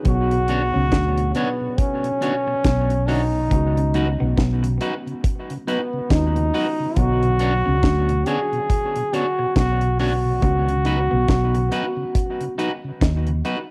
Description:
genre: lovers rock reggae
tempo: 70 BPM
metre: 4/4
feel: swing 59% on 16ths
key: unclear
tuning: A4 = 440 Hz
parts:
  - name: tine electric piano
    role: accompaniment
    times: 0.0-13.7 s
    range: B2 to C#5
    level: -35 LUFS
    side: equal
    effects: none
  - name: deep reggae drum kit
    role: drums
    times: 0.0-13.7 s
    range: hi-hat, kick drum, snare drum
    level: -23 LUFS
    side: equal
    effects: none
  - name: clear trombone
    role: melody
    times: 0.1-12.6 s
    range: B3 to G#4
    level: -25 LUFS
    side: equal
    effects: cassette tape, tape echo, plate reverb
  - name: electric guitar through a small old amp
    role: riff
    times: 0.1-13.3 s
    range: B3 to D#4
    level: -33 LUFS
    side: equal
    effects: spring reverb, cassette tape, analog delay
  - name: vintage muted fingered electric bass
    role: bass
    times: 0.1-13.4 s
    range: B1 to D#2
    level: -23 LUFS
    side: equal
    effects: tube saturation
  - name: mellow tonewheel organ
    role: accompaniment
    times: 0.3-13.6 s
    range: B2 to D#4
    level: -33 LUFS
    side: equal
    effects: slow rotary speaker, cassette tape, analog delay
  - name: electric guitar at the edge of break-up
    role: stabs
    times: 0.5-13.6 s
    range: D4 to C#5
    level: -32 LUFS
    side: equal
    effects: cassette tape, analog delay, plate reverb
room: light reverb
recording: home recording on cassette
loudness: -21 LUFS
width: mono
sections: 0.0-13.7 A section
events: none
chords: 0.1 Bmadd9; 3.5 C#9sus4; 7.0 Bmadd9; 10.4 C#9sus4

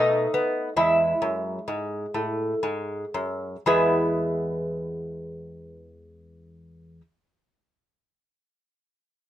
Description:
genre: classical, baroque-style dance for lute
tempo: 57-75 BPM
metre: 3/4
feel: rubato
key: E major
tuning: A4 = 440 Hz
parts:
  - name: lute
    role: solo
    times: 0.0-7.0 s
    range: E2 to G#4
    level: -23 LUFS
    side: equal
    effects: none
room: light reverb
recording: none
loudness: -23 LUFS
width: side -12 dB against mid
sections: 0.0-3.7 A section; 3.7-9.3 B section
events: slowing down 0.0-3.7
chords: 0.0 B7; 0.8 E

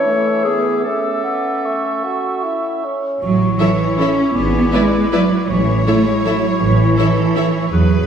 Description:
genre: classical, orchestral ballroom waltz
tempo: 141-174 BPM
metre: 3/4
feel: rubato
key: A major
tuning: A4 = 441 Hz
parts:
  - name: clear clarinet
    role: second line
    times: 0.0-8.1 s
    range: E4 to C#5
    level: -22 LUFS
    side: left 1 dB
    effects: none
  - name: mellow concert flute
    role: second line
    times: 0.0-3.0 s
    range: A5 to D6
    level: -28 LUFS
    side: right 3 dB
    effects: none
  - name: mellow cor anglais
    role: second line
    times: 0.0-8.1 s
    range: B4 to E5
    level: -25 LUFS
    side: equal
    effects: none
  - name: warm bassoon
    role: accompaniment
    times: 0.0-3.2 s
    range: E3 to F#4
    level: -23 LUFS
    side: right 2 dB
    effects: none
  - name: warm French horn section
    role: sustained chords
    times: 0.0-7.5 s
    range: A3 to D5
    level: -26 LUFS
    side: left 2 dB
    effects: none
  - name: rich symphonic cello section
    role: bass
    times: 3.2-8.1 s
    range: E3 to C#4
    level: -16 LUFS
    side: right 3 dB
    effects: none
  - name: rich symphonic double bass section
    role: bass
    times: 3.2-8.0 s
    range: G#1 to E2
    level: -19 LUFS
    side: right 1 dB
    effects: none
  - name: warm symphonic violin section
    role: melody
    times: 3.6-8.1 s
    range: E4 to C#5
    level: -26 LUFS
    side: left 3 dB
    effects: none
  - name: rich studio violin section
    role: second line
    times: 3.6-7.4 s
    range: C#5 to E5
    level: -28 LUFS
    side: left 1 dB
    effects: none
  - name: rich symphonic viola section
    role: accompaniment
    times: 3.6-7.4 s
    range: E4 to B4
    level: -24 LUFS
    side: left 1 dB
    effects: none
room: wet scoring stage reverb, RT60 1.8 s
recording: heard from further back in the room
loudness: -14 LUFS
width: side -8 dB against mid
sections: 0.0-3.2 A section; 3.2-8.1 A section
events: none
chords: 0.4 E7; 0.8 A; 4.4 E7/G#; 5.5 A

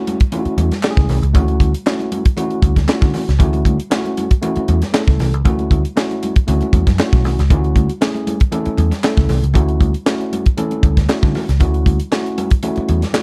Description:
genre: funk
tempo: 117 BPM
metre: 4/4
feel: straight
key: unclear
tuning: A4 = 438 Hz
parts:
  - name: mellow tine electric piano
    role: stabs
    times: 0.0-13.2 s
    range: A3 to A4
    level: -23 LUFS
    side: equal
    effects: none
  - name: tight funk drum kit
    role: drums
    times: 0.1-13.2 s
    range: hi-hat, kick drum, snare drum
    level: -18 LUFS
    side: equal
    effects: none
  - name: congas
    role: percussion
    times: 0.1-13.2 s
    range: none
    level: -29 LUFS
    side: equal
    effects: none
  - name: vintage muted picked electric bass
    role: bass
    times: 0.5-13.0 s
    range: B1 to D3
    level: -18 LUFS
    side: equal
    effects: none
  - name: group handclap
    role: percussion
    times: 0.8-13.2 s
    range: none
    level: -30 LUFS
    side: equal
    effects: none
room: light reverb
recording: dark, warm production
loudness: -16 LUFS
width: mono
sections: 0.0-13.2 A section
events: none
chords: 0.0 Dmaj9

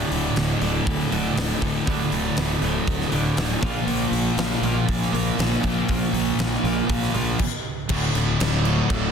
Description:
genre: quiet-loud alternative rock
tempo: 119 BPM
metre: 4/4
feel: straight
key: unclear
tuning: A4 = 441 Hz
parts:
  - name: twelve-string electric guitar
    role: arpeggios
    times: 0.0-7.4 s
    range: D2 to Bb3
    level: -30 LUFS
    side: right 1 dB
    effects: harmonic tremolo
  - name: thick fuzz guitar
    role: riff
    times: 0.0-9.1 s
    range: D2 to Bb3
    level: -25 LUFS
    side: left 8 dB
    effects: distortion
  - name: thick fuzz guitar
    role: riff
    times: 0.0-9.1 s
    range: D2 to Bb3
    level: -26 LUFS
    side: right 10 dB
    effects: distortion
  - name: fuzz fingered electric bass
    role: bass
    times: 0.0-9.1 s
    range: D1 to Bb1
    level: -28 LUFS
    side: right 1 dB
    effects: overdrive
  - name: huge arena drum kit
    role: drums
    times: 0.1-9.0 s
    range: crash cymbal, hi-hat, kick drum, snare drum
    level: -27 LUFS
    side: equal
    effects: none
  - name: overdriven semi-hollow guitar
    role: riff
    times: 7.9-9.1 s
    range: D2 to F#4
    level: -28 LUFS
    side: equal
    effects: none
room: light reverb, studio reverb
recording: dense, heavily limited modern master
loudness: -20 LUFS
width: side -6 dB against mid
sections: 0.0-7.9 A section; 7.9-9.1 B section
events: stop 7.4-7.9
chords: 0.0 D5; 3.6 Bb5; 7.9 D

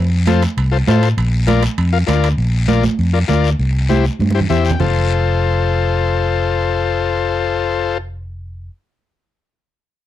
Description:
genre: latin, cumbia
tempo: 199 BPM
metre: 4/4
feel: straight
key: F major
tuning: A4 = 440 Hz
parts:
  - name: fingered electric bass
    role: bass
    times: 0.0-8.7 s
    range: F1 to A2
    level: -16 LUFS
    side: equal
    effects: none
  - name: overdriven combo organ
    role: accompaniment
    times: 0.3-8.0 s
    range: E4 to G5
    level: -18 LUFS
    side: left 8 dB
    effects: none
  - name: congas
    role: percussion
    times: 0.3-4.9 s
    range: none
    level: -21 LUFS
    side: right 5 dB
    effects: none
  - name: guiro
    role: percussion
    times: 0.3-4.9 s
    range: none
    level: -30 LUFS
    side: left 7 dB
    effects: none
  - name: timbales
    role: percussion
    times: 0.3-2.4 s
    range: none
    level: -28 LUFS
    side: right 9 dB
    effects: none
room: little or no reverb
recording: dry, close 1970s-style studio recording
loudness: -14 LUFS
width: side -12 dB against mid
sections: 0.0-4.8 A section; 4.8-7.2 B section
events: drum fill 4.2-4.8; transistor combo organ fill 4.3-4.8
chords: 0.0 F; 1.2 Bb; 3.6 C; 4.8 F

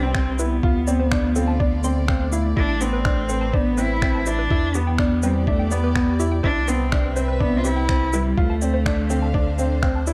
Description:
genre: piano and strings electronica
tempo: 124 BPM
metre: 4/4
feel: straight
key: unclear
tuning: A4 = 439 Hz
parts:
  - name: rich cello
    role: melody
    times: 0.0-9.8 s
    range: G3 to F4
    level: -27 LUFS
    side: equal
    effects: none
  - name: dark studio string section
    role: sustained chords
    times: 0.0-10.1 s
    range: A2 to F5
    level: -33 LUFS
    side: equal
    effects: sidechain pumping
  - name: warbly dusty pluck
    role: arpeggios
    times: 0.0-10.1 s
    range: G4 to C6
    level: -36 LUFS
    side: equal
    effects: chorus, sidechain pumping, delay
  - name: clear upright piano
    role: riff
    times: 0.0-10.1 s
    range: B3 to F4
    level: -28 LUFS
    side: equal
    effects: delay
  - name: warm sub bass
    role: bass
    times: 0.0-10.1 s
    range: A1 to E2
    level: -26 LUFS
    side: equal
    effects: tube saturation, sidechain pumping
  - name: electronic finger snaps and shaker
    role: drums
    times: 0.1-10.1 s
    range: none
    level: -32 LUFS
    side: equal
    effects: overdrive
  - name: electronic kick drum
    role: drums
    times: 0.1-9.9 s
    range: none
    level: -25 LUFS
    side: equal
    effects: none
room: light reverb, studio ambience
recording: dark, warm production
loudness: -21 LUFS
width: mono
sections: 0.0-10.1 A section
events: none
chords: 0.0 Cmaj7; 0.6 Dm7; 2.6 Amadd9; 4.5 Em7; 6.4 Cmaj7; 8.4 Dm7

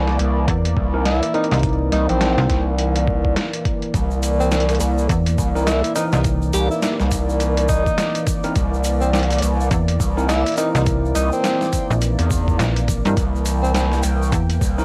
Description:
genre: glitch hop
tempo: 104 BPM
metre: 4/4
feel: swing 60% on 16ths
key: unclear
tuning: A4 = 440 Hz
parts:
  - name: dark analog pad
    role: sustained chords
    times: 0.0-14.8 s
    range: E3 to G5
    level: -28 LUFS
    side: equal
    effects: chorus, sidechain pumping, cassette tape
  - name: gritty driven synth bass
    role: bass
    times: 0.0-14.8 s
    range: Bb1 to E2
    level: -22 LUFS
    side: equal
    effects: overdrive
  - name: boom bap sampler-style drum kit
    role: drums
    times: 0.1-14.6 s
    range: hi-hat, snare drum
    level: -28 LUFS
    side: equal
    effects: overdrive, cassette tape
  - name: slap-like FM bass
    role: bass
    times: 0.5-14.6 s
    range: Bb1 to G2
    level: -21 LUFS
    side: equal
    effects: tube saturation
  - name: electronic kick drum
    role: drums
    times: 0.5-14.8 s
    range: none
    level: -24 LUFS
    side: equal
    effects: overdrive, cassette tape
  - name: tine electric piano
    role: stabs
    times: 0.9-14.8 s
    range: E3 to Bb4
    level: -28 LUFS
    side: equal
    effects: lush chorus, sidechain pumping, cassette tape, analog delay
  - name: mellow tenor saxophone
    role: melody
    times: 1.1-13.9 s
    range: C4 to G4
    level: -27 LUFS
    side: equal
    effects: cassette tape, analog delay
  - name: tube shaker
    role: percussion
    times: 3.9-14.8 s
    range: none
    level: -37 LUFS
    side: equal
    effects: none
room: light reverb, digital ambience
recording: home recording on cassette, vinyl crackle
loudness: -19 LUFS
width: mono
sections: 0.0-14.8 A section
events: none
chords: 0.0 C7#9

